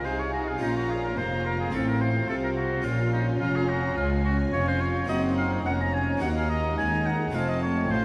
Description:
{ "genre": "classical, baroque-style concerto movement with solo episodes", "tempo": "107 BPM", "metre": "4/4", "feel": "straight", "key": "unclear", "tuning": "A4 = 444 Hz", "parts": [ { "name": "clear oboe", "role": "melody", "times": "0.0-8.0 s", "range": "Eb4 to Bb5", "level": "-32 LUFS", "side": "equal", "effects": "none" }, { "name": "warm chamber violin section", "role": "melody", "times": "0.0-8.0 s", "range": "F5 to Bb5", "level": "-43 LUFS", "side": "equal", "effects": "none" }, { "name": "warm symphonic violin section", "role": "second line", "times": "0.0-8.0 s", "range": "C4 to Ab4", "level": "-34 LUFS", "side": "equal", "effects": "none" }, { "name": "harpsichord", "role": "accompaniment", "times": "0.0-8.0 s", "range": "Db2 to Gb4", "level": "-36 LUFS", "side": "equal", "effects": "none" }, { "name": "warm symphonic viola section", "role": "accompaniment", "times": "0.0-8.0 s", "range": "Ab3 to F4", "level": "-35 LUFS", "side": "equal", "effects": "none" }, { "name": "warm chamber cello section", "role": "bass", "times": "0.0-8.0 s", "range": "Db2 to Eb3", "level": "-35 LUFS", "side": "equal", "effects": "none" }, { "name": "warm chamber double bass section", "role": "bass", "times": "0.0-8.0 s", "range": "F1 to Eb2", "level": "-33 LUFS", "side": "equal", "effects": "none" } ], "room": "wet cathedral reverb, RT60 5.6 s", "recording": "in a vast, echoing space, vinyl crackle", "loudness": "-26 LUFS", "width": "mono", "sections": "0.0-8.0 A section", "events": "none", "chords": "0.0 Db; 0.6 Bbm; 1.7 F/A; 2.9 Bbm; 5.1 Gb; 6.2 Ebm; 7.3 F" }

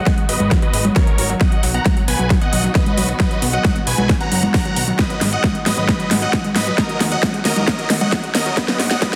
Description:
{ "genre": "uplifting trance", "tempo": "134 BPM", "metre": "4/4", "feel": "straight", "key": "G# minor", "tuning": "A4 = 440 Hz", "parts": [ { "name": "big supersaw lead", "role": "melody", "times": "0.0-9.2 s", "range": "A#4 to A#5", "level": "-25 LUFS", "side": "equal", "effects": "sidechain pumping, low-pass filter, digital delay" }, { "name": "muted studio string section", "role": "sustained chords", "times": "0.0-9.2 s", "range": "D#3 to F#4", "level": "-32 LUFS", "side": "equal", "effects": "sidechain pumping" }, { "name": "unison pluck", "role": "arpeggios", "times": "0.0-9.2 s", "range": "F#3 to B3", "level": "-28 LUFS", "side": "equal", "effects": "sidechain pumping, digital delay" }, { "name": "riser", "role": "sound effects", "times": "5.0-9.2 s", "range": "none", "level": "barely audible", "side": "none", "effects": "none" }, { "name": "big-room dance drum kit", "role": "drums", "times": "0.1-9.2 s", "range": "congas, hi-hat, snare drum", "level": "-22 LUFS", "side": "equal", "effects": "overdrive" }, { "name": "electronic kick drum", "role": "drums", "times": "0.1-9.1 s", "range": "none", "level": "-20 LUFS", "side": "equal", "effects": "overdrive" }, { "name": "plucky analog bass", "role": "bass", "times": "0.3-9.0 s", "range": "F#1 to D#2", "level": "-26 LUFS", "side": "equal", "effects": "sidechain pumping" } ], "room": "moderate lush hall reverb, RT60 2.0 s", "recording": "dense, heavily limited modern master, high-pass filter", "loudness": "-17 LUFS", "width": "mono", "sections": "0.0-9.2 A section", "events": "build-up 0.0-9.2; drum fill 0.0-9.2; filter sweep 0.0-9.2", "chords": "0.0 G#m7; 1.4 B; 5.0 G#m7; 6.8 D#m; 8.6 G#m7" }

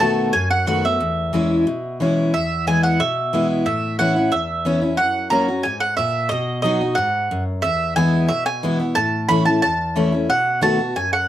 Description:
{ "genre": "bluegrass", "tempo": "181 BPM", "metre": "4/4", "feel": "straight", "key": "E major", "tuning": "A4 = 439 Hz", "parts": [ { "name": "mandolin", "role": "melody", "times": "0.0-11.3 s", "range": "D#5 to B5", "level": "-20 LUFS", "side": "right 2 dB", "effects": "none" }, { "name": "picked steel-string acoustic guitar", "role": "accompaniment", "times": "0.0-11.3 s", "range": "E2 to F#4", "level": "-20 LUFS", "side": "left 1 dB", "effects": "none" } ], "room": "moderate studio reverb, RT60 0.6 s", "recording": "dark, warm production", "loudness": "-17 LUFS", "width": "side -12 dB against mid", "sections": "0.0-2.3 A section; 2.3-11.3 A section", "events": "none", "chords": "0.0 B7; 1.0 E6; 2.3 E; 3.7 Aadd9; 5.0 F#; 6.3 B; 7.6 E; 9.0 A; 10.3 B7" }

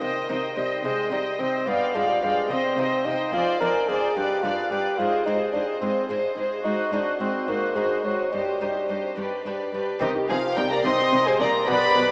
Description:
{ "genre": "classical, baroque-style concerto movement with solo episodes", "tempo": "72 BPM (dotted quarters)", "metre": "6/8", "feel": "straight", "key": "C minor from 3.3 s", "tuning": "A4 = 441 Hz", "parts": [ { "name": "dark studio violin section", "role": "melody", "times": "0.0-12.1 s", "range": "D5 to C6", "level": "-30 LUFS", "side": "equal", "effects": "none" }, { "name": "mellow bassoon", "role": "melody", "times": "0.0-12.1 s", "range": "Eb3 to Bb4", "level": "-25 LUFS", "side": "equal", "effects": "none" }, { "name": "rich chamber violin section", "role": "second line", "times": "0.0-12.1 s", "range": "G4 to F5", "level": "-27 LUFS", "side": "equal", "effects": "none" }, { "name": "dark chamber viola section", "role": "accompaniment", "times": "0.0-12.1 s", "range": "Eb4 to D5", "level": "-30 LUFS", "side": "equal", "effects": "none" }, { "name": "lute", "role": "accompaniment", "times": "0.0-12.1 s", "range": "F2 to G4", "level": "-34 LUFS", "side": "equal", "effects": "none" }, { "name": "rich chamber cello section", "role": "bass", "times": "0.0-12.0 s", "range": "F2 to C3", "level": "-33 LUFS", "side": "equal", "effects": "none" }, { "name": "rich chamber double bass section", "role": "bass", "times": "10.0-12.0 s", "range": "B1 to C2", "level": "-38 LUFS", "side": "equal", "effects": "none" } ], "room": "wet cathedral reverb, RT60 5.3 s", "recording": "in a vast, echoing space, small speaker sound", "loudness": "-21 LUFS", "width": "side -30 dB against mid", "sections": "0.0-10.0 A section; 10.0-12.1 B section", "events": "none", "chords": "0.0 Cm; 1.7 G5; 2.5 Cm; 3.3 Dm7b5/F; 4.2 G7; 5.0 Ab; 6.6 Ab7; 8.3 Cm/G; 9.2 G; 10.0 Cm" }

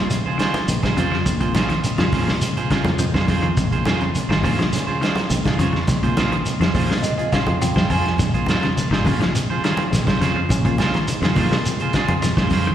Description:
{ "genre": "afrobeat", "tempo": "104 BPM", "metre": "4/4", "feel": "straight", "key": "Bb minor", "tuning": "A4 = 440 Hz", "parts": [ { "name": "clean electric guitar", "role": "arpeggios", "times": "0.0-12.7 s", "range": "C3 to F3", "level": "-26 LUFS", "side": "left 6 dB", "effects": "none" }, { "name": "fingered electric bass", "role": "bass", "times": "0.0-12.7 s", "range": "Ab1 to Bb2", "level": "-22 LUFS", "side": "equal", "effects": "none" }, { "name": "tine electric piano", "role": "accompaniment", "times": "0.1-12.5 s", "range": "Db3 to Ab5", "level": "-26 LUFS", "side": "equal", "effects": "overdrive, fast stereo tremolo, slapback echo" }, { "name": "vintage drum kit", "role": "drums", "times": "0.1-12.7 s", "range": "hi-hat, kick drum, snare drum", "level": "-23 LUFS", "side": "equal", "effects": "none" }, { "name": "shekere", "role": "percussion", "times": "0.1-12.7 s", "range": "none", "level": "-27 LUFS", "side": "equal", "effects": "none" }, { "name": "electric guitar at the edge of break-up", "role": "stabs", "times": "0.3-12.7 s", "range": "Db4 to C5", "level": "-24 LUFS", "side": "right 5 dB", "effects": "spring reverb, slapback echo" }, { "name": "congas", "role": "percussion", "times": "0.5-12.7 s", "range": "none", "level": "-28 LUFS", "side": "right 1 dB", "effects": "none" } ], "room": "light reverb", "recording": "live gig heard through the venue's PA, recital hall reverb", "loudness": "-17 LUFS", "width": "side -10 dB against mid", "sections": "0.0-12.7 A section", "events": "tine electric piano fill 6.5-8.2", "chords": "0.0 Bbm9" }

